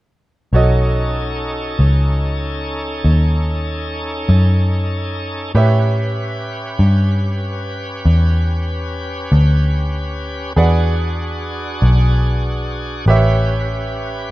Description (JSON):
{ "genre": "blues", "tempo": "48 BPM (dotted quarters)", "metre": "12/8", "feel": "straight", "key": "unclear", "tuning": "A4 = 440 Hz", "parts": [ { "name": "bright grand piano", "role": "accompaniment", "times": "0.5-14.3 s", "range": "F#4 to F#5", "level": "-23 LUFS", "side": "right 5 dB", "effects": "none" }, { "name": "bright tonewheel organ", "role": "sustained chords", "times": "0.5-14.3 s", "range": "C#4 to B4", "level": "-25 LUFS", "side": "equal", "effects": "slow rotary speaker, overdrive" }, { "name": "vintage muted picked electric bass", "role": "bass", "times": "0.5-14.3 s", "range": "A1 to A2", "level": "-15 LUFS", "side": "equal", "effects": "none" } ], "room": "small room ambience", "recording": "rough home demo mix", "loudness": "-15 LUFS", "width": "side -17 dB against mid", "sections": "0.5-14.3 A section", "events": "none", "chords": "0.5 B7; 5.6 A7; 10.6 E7; 13.1 A7", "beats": "| 0.55 1.80 3.06 4.31 | 5.56 6.82 8.07 9.32 | 10.57 11.82 13.08" }